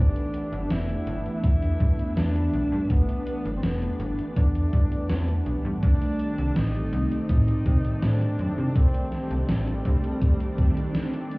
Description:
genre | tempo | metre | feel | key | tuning
vaporwave | 82 BPM | 4/4 | straight | G major | A4 = 440 Hz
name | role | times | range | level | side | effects
breathy tenor saxophone | melody | 0.0-11.3 s | G3 to E4 | -32 LUFS | equal | tape echo
mellow synth brass | accompaniment | 0.0-11.4 s | Eb3 to D5 | -31 LUFS | equal | phaser, wide subtle chorus, analog delay
soft string machine | sustained chords | 0.0-11.4 s | C4 to E5 | -39 LUFS | equal | ensemble chorus
slap-like FM bass | bass | 0.0-10.0 s | E1 to C3 | -25 LUFS | equal | none
gated 80s digital drum machine | drums | 0.2-11.4 s | hi-hat, snare drum | -31 LUFS | equal | gated reverb, gated reverb snare
electronic kick drum | drums | 1.4-10.7 s | none | -22 LUFS | equal | none
room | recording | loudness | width
digital ambience | heard muffled through a wall, club ambience, cassette tape, EQ | -22 LUFS | side -24 dB against mid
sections
0.0-11.4 A section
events
break 10.9-11.4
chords
0.0 G6; 5.8 Cm6

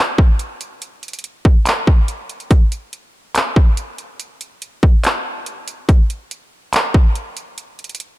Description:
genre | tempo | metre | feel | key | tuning
hip hop | 142 BPM | 4/4 | half-time | none | none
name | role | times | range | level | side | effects
trap drum kit | drums | 0.2-8.1 s | handclaps, hi-hat, kick drum | -14 LUFS | equal | none
room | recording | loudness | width
little or no reverb | dark, warm production | -14 LUFS | side -18 dB against mid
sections
0.0-8.2 A section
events
none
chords
none

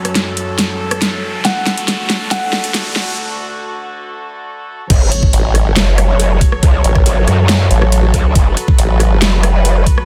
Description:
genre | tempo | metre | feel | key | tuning
heavy wobble dubstep | 139 BPM | 4/4 | half-time | F# minor | A4 = 440 Hz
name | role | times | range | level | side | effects
felt-muted upright piano | melody | 0.0-3.1 s | C#5 to F#5 | -26 LUFS | equal | dub echo
warm chamber string section | sustained chords | 0.0-10.1 s | D2 to C#5 | -24 LUFS | equal | sidechain pumping
dubstep drum kit | drums | 0.0-10.1 s | crash cymbal, hi-hat, rim click, snare drum | -20 LUFS | equal | studio reverb
riser and impact | sound effects | 0.0-6.6 s | none | -25 LUFS | equal | none
growl bass | bass | 4.9-9.8 s | F#1 to F#2 | -15 LUFS | equal | chorus, overdrive
electronic kick drum | drums | 4.9-10.0 s | none | -14 LUFS | equal | overdrive, studio reverb
formant-sweep wobble bass | bass | 5.3-9.2 s | A1 | -14 LUFS | equal | chorus, overdrive
room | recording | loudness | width
digital ambience | dense, heavily limited modern master, high-pass filter | -13 LUFS | mono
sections
0.0-4.9 A section; 4.9-10.1 B section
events
build-up 0.0-4.9; drum fill 0.0-3.2; riser 0.0-3.2; break 3.2-4.9; drop 4.9-10.1; impact 4.9-6.6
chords
0.0 F#m; 1.4 D; 4.9 F#m

